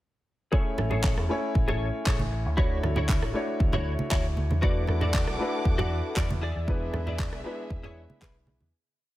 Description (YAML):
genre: nu-disco, nu disco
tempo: 117 BPM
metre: 4/4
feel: straight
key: E mixolydian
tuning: A4 = 441 Hz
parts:
  - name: warm grand piano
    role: accompaniment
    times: 0.5-8.7 s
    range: G#3 to G#5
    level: -32 LUFS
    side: left 1 dB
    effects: sidechain pumping, dub echo
  - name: direct-recorded clean electric guitar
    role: riff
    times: 0.5-8.5 s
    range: E4 to D5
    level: -35 LUFS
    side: left 2 dB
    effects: ensemble chorus, low-pass filter, dub echo
  - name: electronic kick drum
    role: drums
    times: 0.5-8.3 s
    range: none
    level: -26 LUFS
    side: equal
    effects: none
  - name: picked electric bass with an envelope filter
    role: bass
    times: 0.8-8.7 s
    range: A1 to E2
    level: -29 LUFS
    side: equal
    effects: none
  - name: electronic rim click and handclaps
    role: drums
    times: 0.8-8.3 s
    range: none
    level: -35 LUFS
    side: equal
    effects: none
  - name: congas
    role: percussion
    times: 0.8-8.7 s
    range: none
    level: -33 LUFS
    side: right 2 dB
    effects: none
  - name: warm studio violin section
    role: sustained chords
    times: 4.6-8.7 s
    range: G#4 to D6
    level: -38 LUFS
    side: left 1 dB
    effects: sidechain pumping
room: little or no reverb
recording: none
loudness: -24 LUFS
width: side -15 dB against mid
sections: 0.5-8.7 groove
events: fade-out 6.0-8.7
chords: 0.5 Amaj7; 2.6 Dmaj9; 4.6 E9sus4; 6.4 E7